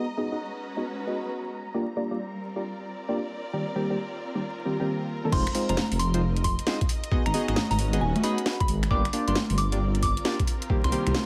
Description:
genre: UK garage, two-step garage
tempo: 134 BPM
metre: 4/4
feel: swing 65% on 16ths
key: F dorian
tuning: A4 = 439 Hz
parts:
  - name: soft string machine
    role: sustained chords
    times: 0.0-5.3 s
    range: Bb5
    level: -46 LUFS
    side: equal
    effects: ensemble chorus, sidechain pumping
  - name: deep mellow chord stab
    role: stabs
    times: 0.0-11.1 s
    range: Eb3 to Eb5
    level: -32 LUFS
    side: equal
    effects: chorus, tape echo
  - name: warm studio string section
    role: texture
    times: 0.0-11.3 s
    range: G3 to Eb5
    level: -40 LUFS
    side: equal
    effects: sidechain pumping
  - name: soft synth bell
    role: melody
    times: 5.3-11.1 s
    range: Ab5 to D6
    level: -35 LUFS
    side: equal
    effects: chorus, phaser, dub echo
  - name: dark detuned saw bass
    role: bass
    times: 5.3-11.1 s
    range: Eb1 to C2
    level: -29 LUFS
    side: equal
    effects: none
  - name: electronic kick drum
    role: drums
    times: 5.3-10.8 s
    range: none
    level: -29 LUFS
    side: equal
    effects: small room ambience
  - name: garage drum kit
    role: drums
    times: 5.3-11.3 s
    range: congas, crash cymbal, finger snaps, hi-hat, snare drum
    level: -32 LUFS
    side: equal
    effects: small room ambience
room: light reverb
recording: vinyl crackle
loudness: -27 LUFS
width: mono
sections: 0.0-5.3 A section; 5.3-11.3 B section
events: drop 5.3-11.3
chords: 0.0 Abm7; 1.7 Gm7; 3.3 Cm7; 5.3 Fm7; 7.1 Abm7; 8.9 Gm7; 10.5 Cm7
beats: 0.40 0.85 1.29 | 1.74 2.19 2.64 3.09 | 3.53 3.98 4.43 4.88 | 5.33 5.77 6.22 6.67 | 7.12 7.56 8.01 8.46 | 8.91 9.36 9.80 10.25 | 10.70 11.15

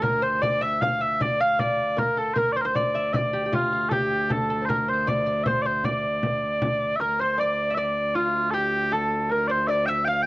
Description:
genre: medieval dance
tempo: 155 BPM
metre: 3/4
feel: straight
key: D minor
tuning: A4 = 440 Hz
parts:
  - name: mellow small bagpipes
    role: melody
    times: 0.0-10.3 s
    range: F4 to G5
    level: -23 LUFS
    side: equal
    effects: cassette tape
  - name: concert harp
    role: second line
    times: 0.0-10.3 s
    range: F4 to F5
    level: -30 LUFS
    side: right 1 dB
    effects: cassette tape
  - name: open-back banjo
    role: second line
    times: 0.0-10.1 s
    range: F4 to F5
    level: -34 LUFS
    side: left 3 dB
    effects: cassette tape
  - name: rich viola da gamba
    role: drone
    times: 0.0-10.3 s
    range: D2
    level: -32 LUFS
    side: right 1 dB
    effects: stereo widening, cassette tape
  - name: frame drum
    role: percussion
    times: 0.0-6.8 s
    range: none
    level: -29 LUFS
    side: left 1 dB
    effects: none
room: moderate studio ambience, RT60 0.5 s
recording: home recording on cassette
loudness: -21 LUFS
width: side -20 dB against mid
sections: 0.0-7.0 A section; 7.0-10.3 A section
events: none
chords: none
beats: | 0.03 0.42 0.81 | 1.20 1.59 1.98 | 2.36 2.75 3.14 | 3.53 3.91 4.30 | 4.69 5.08 5.46 | 5.85 6.23 6.62 | 7.00 7.39 7.77 | 8.16 8.54 8.93 | 9.31 9.69 10.08

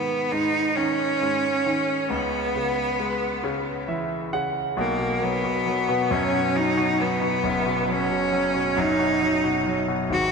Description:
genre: pop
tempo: 45 BPM (dotted quarters)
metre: 6/8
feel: straight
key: B major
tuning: A4 = 441 Hz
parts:
  - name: bright cello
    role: melody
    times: 0.0-10.3 s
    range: A#3 to F#4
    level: -23 LUFS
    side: right 1 dB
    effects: diffuse ambient delay
  - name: clear concert grand piano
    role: accompaniment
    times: 0.0-10.3 s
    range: F#1 to F#5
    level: -26 LUFS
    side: left 1 dB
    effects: none
room: wet lush hall reverb, RT60 2.9 s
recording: dreamy mix soaked in reverb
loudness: -21 LUFS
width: side -5 dB against mid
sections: 0.0-4.8 A section; 4.8-10.3 B section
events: grand piano fill 3.4-4.8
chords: 0.0 G#5; 2.1 C#m7; 4.8 B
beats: 0.77 | 2.10 3.44 | 4.77 6.11 | 7.44 8.77 | 10.10

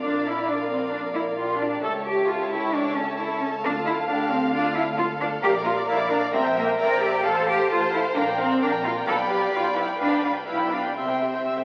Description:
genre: quick classical-period movement for string orchestra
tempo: 132 BPM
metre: 4/4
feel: rubato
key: D minor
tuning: A4 = 439 Hz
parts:
  - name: rich chamber violin section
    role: melody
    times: 0.0-11.6 s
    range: F4 to E5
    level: -34 LUFS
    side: equal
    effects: none
  - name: rich chamber violin section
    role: second line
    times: 0.0-11.5 s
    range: D5 to E6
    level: -32 LUFS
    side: equal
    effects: none
  - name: warm chamber viola section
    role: accompaniment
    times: 0.0-11.6 s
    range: G4 to A5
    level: -30 LUFS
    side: equal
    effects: none
  - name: rich chamber cello section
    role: bass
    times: 0.0-11.6 s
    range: Bb3 to Bb4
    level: -27 LUFS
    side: equal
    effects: none
  - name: rich chamber double bass section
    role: bass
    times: 0.0-11.6 s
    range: A1 to D2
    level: -40 LUFS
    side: equal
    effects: none
room: wet recital hall reverb, RT60 1.5 s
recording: very old 78 rpm record, vinyl crackle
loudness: -24 LUFS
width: mono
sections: 0.0-11.6 A section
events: none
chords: 0.0 Bb; 1.8 A/C#; 3.6 Dm; 5.4 Bb; 6.3 C7/Bb; 7.2 F/A; 8.2 Gm7/Bb; 9.1 G7/B; 11.0 C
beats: | 0.01 0.47 0.92 1.37 | 1.83 2.28 2.73 3.18 | 3.63 4.08 4.52 4.97 | 5.43 5.88 6.33 6.78 | 7.24 7.70 8.16 8.61 | 9.07 9.53 9.99 10.47 | 10.96 11.46

